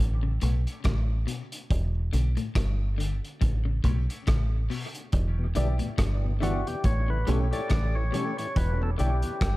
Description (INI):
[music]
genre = dub reggae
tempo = 70 BPM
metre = 4/4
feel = swing 57% on 16ths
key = E dorian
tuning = A4 = 440 Hz
[part]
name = deep dub fingered electric bass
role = bass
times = 0.0-9.6 s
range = E1 to B1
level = -26 LUFS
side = equal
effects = none
[part]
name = tonewheel organ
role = accompaniment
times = 0.2-9.3 s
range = E2 to D4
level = -39 LUFS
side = left 2 dB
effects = overdrive, chorus vibrato, high-pass filter, dub echo
[part]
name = electric guitar at the edge of break-up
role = arpeggios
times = 0.2-9.1 s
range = A2 to D3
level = -37 LUFS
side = left 6 dB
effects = dub echo
[part]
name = mellow electric guitar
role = accompaniment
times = 0.4-8.3 s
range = E3 to G4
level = -37 LUFS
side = right 4 dB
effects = phaser, high-pass filter, dub echo
[part]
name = bright concert grand piano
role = stabs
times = 0.4-9.2 s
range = E4 to D5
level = -38 LUFS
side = left 4 dB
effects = high-pass filter, dub echo
[part]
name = crunchy breakbeat drum kit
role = drums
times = 0.4-9.6 s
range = hi-hat, kick drum, rim click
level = -29 LUFS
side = equal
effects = none
[part]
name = percussive tonewheel organ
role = melody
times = 6.4-9.6 s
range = F#4 to D5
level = -33 LUFS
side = left 1 dB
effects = overdrive, dub echo
[sound]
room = small room ambience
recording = echo-heavy mix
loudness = -24 LUFS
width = side -19 dB against mid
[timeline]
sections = 0.0-9.6 A section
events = none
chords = 0.0 A7; 1.7 Em7; 3.4 A7; 5.1 Em7; 6.8 A7; 8.6 Em7